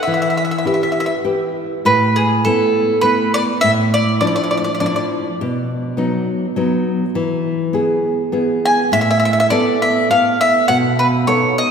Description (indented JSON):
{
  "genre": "italian folk, Italian serenade",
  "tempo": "102 BPM",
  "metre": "3/4",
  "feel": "swing 54% on 8ths",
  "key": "unclear",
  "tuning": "A4 = 440 Hz",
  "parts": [
    { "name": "bowl-back mandolin", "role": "melody", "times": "0.0-5.0, 8.7-11.7 s", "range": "G#4 to G#5", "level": "-16 LUFS", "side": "equal", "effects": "none" },
    { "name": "nylon-string guitar", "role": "accompaniment", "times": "0.1-11.7 s", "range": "A2 to B4", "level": "-17 LUFS", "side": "equal", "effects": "none" }
  ],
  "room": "wet church reverb, RT60 3.2 s",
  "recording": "recorded in a church or concert hall",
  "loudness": "-14 LUFS",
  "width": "side -6 dB against mid",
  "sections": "0.0-1.9 A section; 1.9-11.7 B section",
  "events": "none",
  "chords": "0.1 Em; 1.9 Asus2; 3.6 Dmadd9/A; 5.4 B; 7.2 E; 8.9 Asus2; 10.7 B7"
}